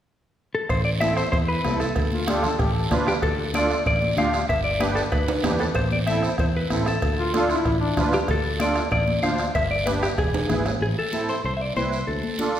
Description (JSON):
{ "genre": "latin, cumbia", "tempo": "190 BPM", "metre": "4/4", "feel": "straight", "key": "A minor", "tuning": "A4 = 440 Hz", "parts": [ { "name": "clean electric guitar", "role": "melody", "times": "0.5-12.6 s", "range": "G4 to F5", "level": "-25 LUFS", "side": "left 2 dB", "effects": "spring reverb" }, { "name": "fingered electric bass", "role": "bass", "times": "0.7-12.2 s", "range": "E1 to E2", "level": "-27 LUFS", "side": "equal", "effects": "none" }, { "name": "bombo", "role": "percussion", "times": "0.7-10.8 s", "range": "none", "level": "-28 LUFS", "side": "right 1 dB", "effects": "none" }, { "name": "congas", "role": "percussion", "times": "0.7-12.6 s", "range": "none", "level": "-32 LUFS", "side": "left 3 dB", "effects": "none" }, { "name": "cowbell and timbales", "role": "percussion", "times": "0.7-10.7 s", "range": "none", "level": "-34 LUFS", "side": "right 3 dB", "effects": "none" }, { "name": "guiro", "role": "percussion", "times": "0.7-12.6 s", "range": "none", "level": "-36 LUFS", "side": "right 4 dB", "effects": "none" }, { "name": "musette accordion", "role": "accompaniment", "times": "1.0-12.6 s", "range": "C4 to C5", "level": "-27 LUFS", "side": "right 2 dB", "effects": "none" }, { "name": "bright trombone", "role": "second line", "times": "2.1-3.0, 7.2-8.0 s", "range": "D4 to A4", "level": "-27 LUFS", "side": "left 3 dB", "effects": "none" } ], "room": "wet recital hall reverb, RT60 1.5 s", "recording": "recorded in a church or concert hall", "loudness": "-20 LUFS", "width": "side -10 dB against mid", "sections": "0.7-10.8 A section; 10.8-12.6 B section", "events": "drum fill 5.3-5.8, 10.3-10.8", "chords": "0.0 N.C.; 0.7 Am; 2.0 Dm; 4.5 G; 5.8 Am; 7.0 Dm; 9.5 G; 10.2 E; 10.8 Am; 12.1 Dm" }